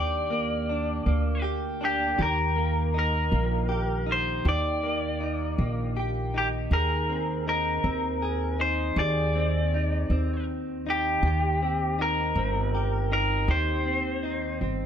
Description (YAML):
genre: pop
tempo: 53 BPM (dotted quarters)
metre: 6/8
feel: straight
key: Eb major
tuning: A4 = 440 Hz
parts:
  - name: lightly driven lead guitar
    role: melody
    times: 0.0-14.6 s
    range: G4 to D5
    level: -28 LUFS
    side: left 1 dB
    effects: none
  - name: direct-recorded clean electric guitar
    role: accompaniment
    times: 0.0-14.9 s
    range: Eb3 to Ab4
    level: -30 LUFS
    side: equal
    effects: double-tracked left and right
  - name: upright bass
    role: bass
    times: 0.0-14.9 s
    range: G1 to Eb2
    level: -28 LUFS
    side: equal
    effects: none
room: light reverb, small room ambience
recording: none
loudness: -24 LUFS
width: side -8 dB against mid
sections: 0.0-14.9 A section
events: none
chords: 0.0 Gm; 2.2 Eb; 6.7 Ab/Eb; 11.2 Cm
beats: 1.06 | 2.19 3.33 | 4.46 5.58 | 6.71 7.84 | 8.97 10.10 | 11.23 12.36 | 13.49 14.62